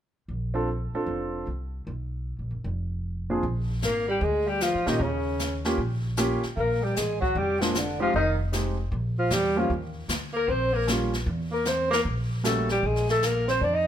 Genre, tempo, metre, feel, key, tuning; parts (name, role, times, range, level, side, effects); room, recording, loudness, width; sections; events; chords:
jazz, small-group swing and bop; 153 BPM; 4/4; swing 65% on 8ths; Bb major; A4 = 441 Hz
upright bass; bass; 0.3-13.9 s; F1 to Bb2; -30 LUFS; equal
warm grand piano; accompaniment; 0.5-12.7 s; Bb2 to A4; -28 LUFS; right 1 dB
jazz brush drum kit; drums; 3.4-13.9 s; brushed snare drum, hi-hat, kick drum, snare drum; -33 LUFS; left 1 dB
breathy alto saxophone; melody; 3.8-13.9 s; Bb3 to Eb5; -27 LUFS; left 3 dB
mellow tenor saxophone; second line; 3.9-13.9 s; Bb2 to Eb4; -29 LUFS; right 4 dB
light reverb; -24 LUFS; side -10 dB against mid
0.3-3.4 A section; 3.4-13.9 B section
0.3 Bbmaj7; 1.9 B5; 2.6 F5; 3.4 Bb7; 5.0 Eb7; 6.6 Bb7; 8.1 Fm7; 8.9 Bb5; 9.7 Eb7; 11.3 Edim7; 12.8 Bb7